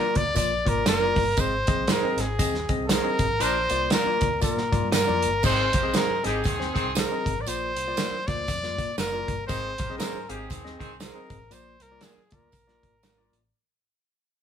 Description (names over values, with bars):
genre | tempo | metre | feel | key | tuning
uptempo 1960s-style soul | 118 BPM | 4/4 | swing 60% on 8ths | Bb mixolydian | A4 = 441 Hz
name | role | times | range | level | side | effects
clear trumpet | melody | 0.0-13.3 s | Ab4 to D5 | -26 LUFS | left 1 dB | none
barky tine electric piano | accompaniment | 0.0-13.4 s | Ab2 to F5 | -32 LUFS | left 4 dB | none
electric guitar through a small old amp | stabs | 0.0-13.2 s | Eb4 to D5 | -32 LUFS | right 6 dB | none
vintage muted picked electric bass | bass | 0.0-13.5 s | Gb1 to Bb2 | -33 LUFS | equal | none
warm soul drum kit | drums | 0.2-13.4 s | crash cymbal, hi-hat, kick drum, snare drum | -27 LUFS | right 1 dB | none
tambourine | percussion | 0.4-13.2 s | none | -37 LUFS | right 5 dB | none
warm horn section | second line | 3.4-11.0 s | Eb3 to C5 | -32 LUFS | equal | none
room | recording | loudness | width
moderate studio reverb, RT60 0.9 s | band playing live in one room | -22 LUFS | side -8 dB against mid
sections
0.0-5.4 A section; 5.4-13.5 B section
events
band accent 3.4-5.4; fade-out 5.4-13.5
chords
0.0 Bb; 1.4 Ab; 3.4 Bb; 5.4 Ab; 7.5 Bb; 9.5 Ab; 11.5 Bb